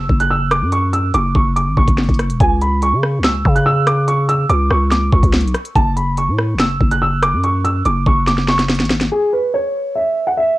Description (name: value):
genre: hip hop, drill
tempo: 143 BPM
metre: 4/4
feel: half-time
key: unclear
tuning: A4 = 439 Hz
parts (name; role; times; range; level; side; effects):
- dark concert grand piano; melody; 0.0-10.5 s; G#4 to F#6; -17 LUFS; right 1 dB; low-pass filter, cassette tape, tape echo
- growling 808-style bass; bass; 0.0-9.1 s; E1 to C#3; -17 LUFS; equal; none
- drill drum kit; drums; 0.1-9.1 s; hi-hat, kick drum, rim click, snare drum; -16 LUFS; equal; cassette tape
room: little or no reverb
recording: home recording on cassette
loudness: -13 LUFS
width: side -17 dB against mid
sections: 0.0-9.1 A section; 9.1-10.6 B section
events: drum fill 8.3-9.1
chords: 0.0 F#5; 2.4 N.C.; 5.8 F#5; 9.1 N.C.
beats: 0.30 | 0.72 1.14 1.56 1.98 | 2.40 2.82 3.24 3.66 | 4.08 4.50 4.92 5.34 | 5.76 6.18 6.60 7.02 | 7.43 7.86 8.27 8.69 | 9.11 9.53 9.95 10.37